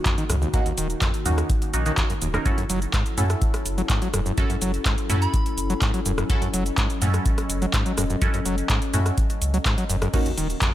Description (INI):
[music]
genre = acid house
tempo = 125 BPM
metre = 4/4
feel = straight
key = unclear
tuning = A4 = 440 Hz
[part]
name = warbly tape-like pad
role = sustained chords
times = 0.0-10.7 s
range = Eb3 to Eb5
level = -31 LUFS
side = left 2 dB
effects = chorus, built-in reverb, sidechain pumping
[part]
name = band-passed chord stab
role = stabs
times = 0.0-10.3 s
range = Bb3 to Bb4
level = -31 LUFS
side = right 2 dB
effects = phaser, wide subtle chorus, tape echo
[part]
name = overdriven acid bass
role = riff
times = 0.1-10.7 s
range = Eb2 to Gb3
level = -28 LUFS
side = equal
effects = distortion, tube saturation, wide subtle chorus, tape echo
[part]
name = booming analog drum machine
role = drums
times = 0.1-10.7 s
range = cabasa, crash cymbal, handclaps, hi-hat, rim click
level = -28 LUFS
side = equal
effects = none
[part]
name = electronic kick drum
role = drums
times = 0.1-10.7 s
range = none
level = -24 LUFS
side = equal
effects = none
[part]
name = warm sub bass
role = bass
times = 0.3-10.6 s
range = Eb1 to Gb2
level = -25 LUFS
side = equal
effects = sidechain pumping
[part]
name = soft synth bell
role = melody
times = 5.2-5.6 s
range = Cb6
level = -35 LUFS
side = right 1 dB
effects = chorus, phaser, dub echo
[sound]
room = little or no reverb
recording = none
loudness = -20 LUFS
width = side -13 dB against mid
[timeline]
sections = 0.0-10.7 A section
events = none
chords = 0.0 Ebm7; 2.5 Gbm7; 10.1 Ebm7